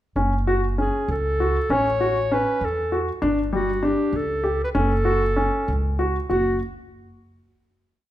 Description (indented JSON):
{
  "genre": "contemporary instrumental, chamber music in an uneven meter",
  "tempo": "195 BPM (eighths)",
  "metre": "5/8",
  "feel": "straight",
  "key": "unclear",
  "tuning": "A4 = 440 Hz",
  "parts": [
    { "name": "warm baby grand piano", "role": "arpeggios", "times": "0.2-6.6 s", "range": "G3 to G4", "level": "-24 LUFS", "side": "left 1 dB", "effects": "none" },
    { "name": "upright bass", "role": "bass", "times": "0.2-6.6 s", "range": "F#1 to E2", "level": "-25 LUFS", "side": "equal", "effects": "none" },
    { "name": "warm clarinet", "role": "melody", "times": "0.5-6.6 s", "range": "F#4 to C#5", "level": "-24 LUFS", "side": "equal", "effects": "none" }
  ],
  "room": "moderate recital hall reverb, RT60 1.4 s",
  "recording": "minimal, uncompressed stereo recording",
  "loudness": "-20 LUFS",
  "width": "side -13 dB against mid",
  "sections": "0.2-6.3 A section; 6.3-7.8 final note",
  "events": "none",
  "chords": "0.2 F#m; 1.7 A; 3.2 G5; 4.7 F#m; 6.3 N.C."
}